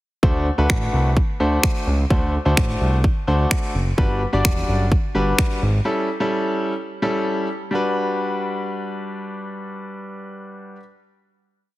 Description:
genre	dance-pop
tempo	128 BPM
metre	4/4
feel	straight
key	G major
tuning	A4 = 439 Hz
part	clear concert grand piano	accompaniment	0.2-10.8 s	G3 to D5	-23 LUFS	left 1 dB	sidechain pumping
part	fat analog bass	bass	0.2-5.8 s	F#1 to D2	-20 LUFS	equal	sidechain pumping
part	house drum kit	drums	0.2-5.5 s	finger snaps, kick drum	-20 LUFS	equal	none
room	light reverb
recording	heavily compressed radio sound, multiband compression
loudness	-18 LUFS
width	side -17 dB against mid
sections	0.2-7.7 verse; 7.7-11.5 final chord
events	none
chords	0.2 D7; 4.0 Gmaj7; 5.9 A7; 7.7 Gmaj7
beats	| 0.23 0.70 1.17 1.64 | 2.10 2.57 3.04 3.51 | 3.98 4.45 4.92 5.39 | 5.86 6.32 6.79 7.26 | 7.73 8.20 8.67 9.14 | 9.61 10.07 10.54

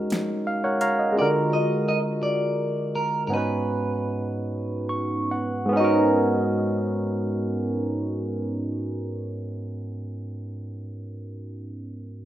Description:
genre	slow six-eight R&B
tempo	46-57 BPM (dotted quarters)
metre	6/8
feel	straight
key	G# dorian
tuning	A4 = 439 Hz
part	barky tine electric piano	accompaniment	0.0-12.2 s	G#2 to C#6	-24 LUFS	right 1 dB	overdrive, phaser
part	smooth R&B drum kit	drums	0.1-1.0 s	hi-hat, snare drum	-30 LUFS	left 1 dB	none
part	clean electric guitar	melody	1.2-10.6 s	A#4 to D#5	-28 LUFS	left 1 dB	lush chorus
room	digital ambience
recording	rough home demo mix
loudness	-22 LUFS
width	side -12 dB against mid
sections	0.0-5.7 A section; 5.7-11.0 B section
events	tine electric piano fill 0.1-1.2, 4.5-5.7; slowing down 1.2-5.7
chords	0.0 F#69; 1.2 A#7b13; 3.3 G#m7; 5.7 G#m11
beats	0.10 | 1.16 2.22 | 3.32 4.49 | 5.75 7.06 | 8.38 9.69

